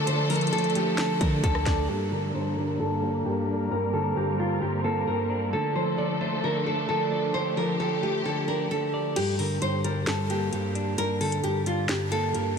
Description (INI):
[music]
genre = hip hop, trap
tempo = 132 BPM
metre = 4/4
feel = half-time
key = G minor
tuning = A4 = 440 Hz
[part]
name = nylon-string guitar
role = melody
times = 0.0-12.6 s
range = F4 to D5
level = -28 LUFS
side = right 1 dB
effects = low-pass filter, analog delay
[part]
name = clean electric guitar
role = accompaniment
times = 0.0-12.6 s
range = G2 to D5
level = -29 LUFS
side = left 1 dB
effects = low-pass filter
[part]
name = rich studio string section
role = sustained chords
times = 0.0-9.1 s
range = F3 to Bb4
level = -31 LUFS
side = equal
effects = low-pass filter
[part]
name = clean 808-style bass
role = bass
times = 0.0-1.9 s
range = D2 to D3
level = -28 LUFS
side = equal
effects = none
[part]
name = trap drum kit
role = drums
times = 0.1-1.8, 9.2-12.5 s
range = crash cymbal, hi-hat, kick drum, rim click, snare drum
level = -33 LUFS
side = equal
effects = none
[sound]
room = moderate huge ambient reverb, RT60 6.2 s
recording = dreamy mix soaked in reverb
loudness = -24 LUFS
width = side -6 dB against mid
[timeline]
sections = 0.0-1.9 A section; 1.9-9.2 B section; 9.2-12.6 C section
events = filter sweep 1.9-9.2; kick muted 9.2-12.6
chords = 0.0 Dm; 1.9 Gm; 5.5 Dm; 9.2 Gm